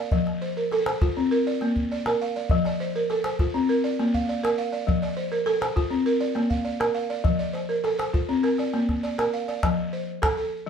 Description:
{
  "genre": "west african traditional, West African string and xylophone music",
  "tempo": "101 BPM",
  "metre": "4/4",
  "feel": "straight",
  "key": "F major",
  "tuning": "A4 = 441 Hz",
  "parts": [
    { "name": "balafon", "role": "arpeggios", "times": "0.0-10.7 s", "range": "F3 to F5", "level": "-23 LUFS", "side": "equal", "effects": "none" },
    { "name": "calabash", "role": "percussion", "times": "0.1-10.4 s", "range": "none", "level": "-26 LUFS", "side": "equal", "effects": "none" }
  ],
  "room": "wet studio reverb, RT60 0.7 s",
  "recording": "band playing live in one room",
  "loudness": "-22 LUFS",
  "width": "side -7 dB against mid",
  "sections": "0.0-9.6 A section; 9.6-10.7 B section",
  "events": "none",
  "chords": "0.1 F; 1.3 Bb; 2.5 F; 3.7 Bb; 4.9 F; 6.1 Bb; 7.2 F; 8.4 Bb; 9.6 F"
}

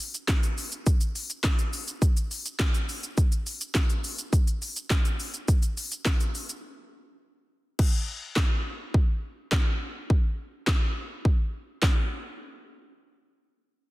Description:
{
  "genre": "pop",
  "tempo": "104 BPM",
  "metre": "4/4",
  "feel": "straight",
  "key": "none",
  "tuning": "none",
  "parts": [
    { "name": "house drum kit", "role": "drums", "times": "0.0-12.0 s", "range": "crash cymbal, handclaps, hi-hat, kick drum, shaker, snare drum", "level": "-24 LUFS", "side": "equal", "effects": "overdrive" }
  ],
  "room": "little or no reverb",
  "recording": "dense, heavily limited modern master",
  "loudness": "-24 LUFS",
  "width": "side -19 dB against mid",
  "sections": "0.0-7.8 A section; 7.8-12.4 B section; 12.4-13.9 C section",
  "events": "drop 0.0-7.8; break 6.6-7.8",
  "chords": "none"
}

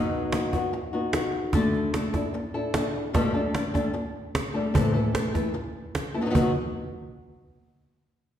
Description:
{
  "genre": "flamenco",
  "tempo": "149 BPM",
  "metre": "4/4",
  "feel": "straight",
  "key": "unclear",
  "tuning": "A4 = 438 Hz",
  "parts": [
    { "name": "flamenco guitar", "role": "melody", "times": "0.0-6.5 s", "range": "G2 to A4", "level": "-26 LUFS", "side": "left 1 dB", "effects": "none" },
    { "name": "cajon", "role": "percussion", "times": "0.1-6.4 s", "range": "none", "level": "-29 LUFS", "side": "right 1 dB", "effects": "none" }
  ],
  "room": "wet recital hall reverb, RT60 1.5 s",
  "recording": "recorded in a church or concert hall",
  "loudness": "-24 LUFS",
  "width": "side -10 dB against mid",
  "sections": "0.0-6.3 A section; 6.3-8.0 B section",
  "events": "none",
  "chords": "0.0 B; 1.5 Dsus2; 3.1 Gsus2; 4.7 A5; 6.3 N.C."
}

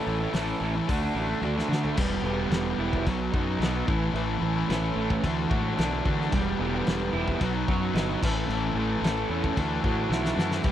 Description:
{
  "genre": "indie rock",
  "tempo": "111 BPM",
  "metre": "4/4",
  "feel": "straight",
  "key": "E dorian",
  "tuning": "A4 = 440 Hz",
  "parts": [
    { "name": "crunchy overdriven guitar", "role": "riff", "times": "0.0-10.7 s", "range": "E3 to A4", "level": "-30 LUFS", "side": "right 8 dB", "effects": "lush chorus" },
    { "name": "fuzz guitar", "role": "riff", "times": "0.0-10.7 s", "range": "E2 to A4", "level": "-30 LUFS", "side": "left 7 dB", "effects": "distortion" },
    { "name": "fuzz fingered electric bass", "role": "bass", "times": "0.1-10.7 s", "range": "E1 to D3", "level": "-30 LUFS", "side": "left 1 dB", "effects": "overdrive" },
    { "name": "loose indie drum kit", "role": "drums", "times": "0.3-10.7 s", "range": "crash cymbal, hi-hat, kick drum, snare drum, toms", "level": "-30 LUFS", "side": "left 1 dB", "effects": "none" }
  ],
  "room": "little or no reverb",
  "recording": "dry, close 1970s-style studio recording",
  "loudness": "-24 LUFS",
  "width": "side -11 dB against mid",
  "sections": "0.0-2.0 A section; 2.0-10.7 B section",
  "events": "drum fill 1.4-2.0, 10.1-10.6",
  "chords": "0.0 A; 0.9 D; 2.0 Em; 3.1 B; 3.9 A; 5.2 Dadd9; 6.3 Em; 7.4 B; 8.2 A; 9.6 Dadd9"
}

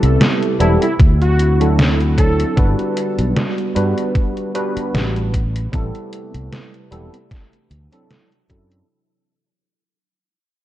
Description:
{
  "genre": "vaporwave",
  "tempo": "76 BPM",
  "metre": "4/4",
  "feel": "swing 55% on 16ths",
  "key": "unclear",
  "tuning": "A4 = 440 Hz",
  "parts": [
    { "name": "tine electric piano", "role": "accompaniment", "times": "0.0-8.9 s", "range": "F#3 to B4", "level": "-21 LUFS", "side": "right 1 dB", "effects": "analog chorus, vintage 12-bit sampler grit, analog delay" },
    { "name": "warbly tape-like pad", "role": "sustained chords", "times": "0.0-8.9 s", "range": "C3 to B4", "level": "-28 LUFS", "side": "right 2 dB", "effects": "chorus, built-in reverb" },
    { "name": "fretless electric bass", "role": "bass", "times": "0.0-8.8 s", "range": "E1 to G2", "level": "-16 LUFS", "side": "equal", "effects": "none" },
    { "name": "detuned 8-bit digital drum machine", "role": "drums", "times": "0.0-8.9 s", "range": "hi-hat, snare drum", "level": "-20 LUFS", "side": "equal", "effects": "overdrive" },
    { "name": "warm velvety synth lead", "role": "melody", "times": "0.6-2.7 s", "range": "E4 to A4", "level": "-23 LUFS", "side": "left 1 dB", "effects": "chorus, tape echo" },
    { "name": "electronic kick drum", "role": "drums", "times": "1.0-8.7 s", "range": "none", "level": "-14 LUFS", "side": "equal", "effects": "overdrive" }
  ],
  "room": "light reverb",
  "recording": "cassette tape",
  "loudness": "-14 LUFS",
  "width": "side -14 dB against mid",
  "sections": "0.0-8.9 A section",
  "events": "fade-out 0.5-8.9",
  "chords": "0.0 Am9; 1.0 D9; 2.6 Gmaj7; 5.3 Am9; 7.3 D9"
}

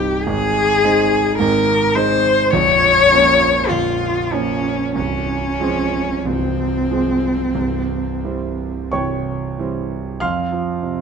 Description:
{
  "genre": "classical, romantic duo for cello and grand piano",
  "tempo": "42-54 BPM",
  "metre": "4/4",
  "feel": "rubato",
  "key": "F minor",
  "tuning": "A4 = 440 Hz",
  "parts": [
    { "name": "warm cello", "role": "melody", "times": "0.0-8.9 s", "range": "C4 to Db5", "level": "-16 LUFS", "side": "left 3 dB", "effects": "none" },
    { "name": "warm concert grand piano", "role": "accompaniment", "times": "0.0-11.0 s", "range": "Bb0 to F6", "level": "-20 LUFS", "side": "right 3 dB", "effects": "none" }
  ],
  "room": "moderate scoring stage reverb, RT60 1.8 s",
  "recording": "close, detailed microphones",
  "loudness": "-15 LUFS",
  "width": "side -6 dB against mid",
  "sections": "0.0-10.2 A section",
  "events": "none",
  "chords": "0.3 Ab; 2.5 Bbm; 5.0 Fm/C; 7.6 C; 10.2 F5"
}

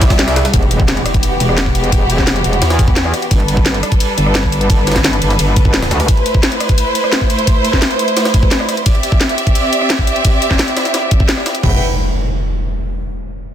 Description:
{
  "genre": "dark technical drum and bass",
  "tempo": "173 BPM",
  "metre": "4/4",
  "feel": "straight",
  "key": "E minor",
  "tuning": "A4 = 440 Hz",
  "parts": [
    { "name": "rich studio string section", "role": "sustained chords", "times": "0.0-11.8 s", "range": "E3 to G5", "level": "-17 LUFS", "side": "equal", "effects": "sidechain pumping" },
    { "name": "metallic wobble bass", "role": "bass", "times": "0.0-6.1, 11.6-11.8 s", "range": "E1 to E2", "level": "-16 LUFS", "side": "equal", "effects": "chorus, overdrive, sidechain pumping" },
    { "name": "drum and bass drum kit", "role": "drums", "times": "0.0-11.7 s", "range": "crash cymbal, kick drum, toms", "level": "-14 LUFS", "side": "equal", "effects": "none" },
    { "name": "drum and bass drum kit", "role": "drums", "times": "0.0-11.6 s", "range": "hi-hat, rim click, snare drum", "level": "-17 LUFS", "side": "left 1 dB", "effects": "none" },
    { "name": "jungle sampler-style drum kit", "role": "drums", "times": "0.0-11.6 s", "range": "hi-hat, ride cymbal, snare drum", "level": "-23 LUFS", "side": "right 1 dB", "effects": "high-pass filter on snare, high-pass filter on cymbals, high-pass filter on hats, high-pass filter on room" },
    { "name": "impact", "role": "sound effects", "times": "0.5-1.9, 11.6-13.0 s", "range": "none", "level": "-19 LUFS", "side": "equal", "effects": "none" }
  ],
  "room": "light reverb",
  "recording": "dense, heavily limited modern master",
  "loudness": "-11 LUFS",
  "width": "side -10 dB against mid",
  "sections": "0.5-11.6 A section; 11.6-13.0 B section",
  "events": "break 0.2-0.5; impact 0.5-1.9",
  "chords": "0.0 C; 0.5 Em; 3.3 G; 6.1 Am; 8.9 C; 11.6 Em"
}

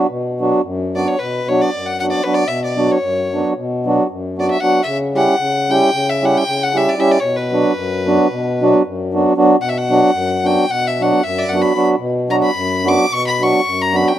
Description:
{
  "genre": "balkan folk",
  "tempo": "227 BPM (eighths)",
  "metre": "9/8",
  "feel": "straight",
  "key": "B minor",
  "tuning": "A4 = 440 Hz",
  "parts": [
    { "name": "mellow accordion", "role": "accompaniment", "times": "0.0-14.2 s", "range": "F#2 to G4", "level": "-15 LUFS", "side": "right 1 dB", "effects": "none" },
    { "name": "rich fiddle", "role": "melody", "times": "1.0-14.2 s", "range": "B4 to D6", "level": "-19 LUFS", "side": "left 2 dB", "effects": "none" }
  ],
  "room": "light reverb, small room ambience",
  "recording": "rough home demo mix",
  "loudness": "-14 LUFS",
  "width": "side -12 dB against mid",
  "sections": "0.1-14.2 A section",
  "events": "fiddle solo 0.1-14.2",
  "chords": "0.1 Bm; 4.8 C#dim; 7.2 Bm"
}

